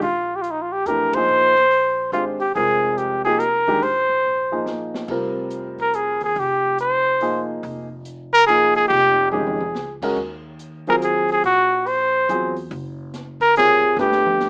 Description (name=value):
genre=modal jazz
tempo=142 BPM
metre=3/4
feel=swing 64% on 8ths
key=unclear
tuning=A4 = 441 Hz
part: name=mellow trumpet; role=melody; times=0.0-14.5 s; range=Eb4 to C5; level=-19 LUFS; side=equal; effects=none
part: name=upright bass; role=bass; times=0.0-14.5 s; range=F1 to F2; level=-38 LUFS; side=equal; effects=none
part: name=open jazz drum kit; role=drums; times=0.0-14.5 s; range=crash cymbal, hi-hat, kick drum, ride cymbal, snare drum, toms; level=-39 LUFS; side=equal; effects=none
part: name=warm grand piano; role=accompaniment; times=0.9-14.5 s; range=C3 to Db5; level=-27 LUFS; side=equal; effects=none
room=moderate digital room reverb, RT60 1.1 s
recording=rough home demo mix, small speaker sound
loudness=-19 LUFS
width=mono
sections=0.0-5.1 A section; 5.1-14.5 B section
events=band accent 1.1; drum fill 4.2-5.1, 9.3-9.7, 14.0-14.5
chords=0.0 Bb9sus4; 5.1 Fm9; 10.2 Ebmadd9; 14.0 Gadd9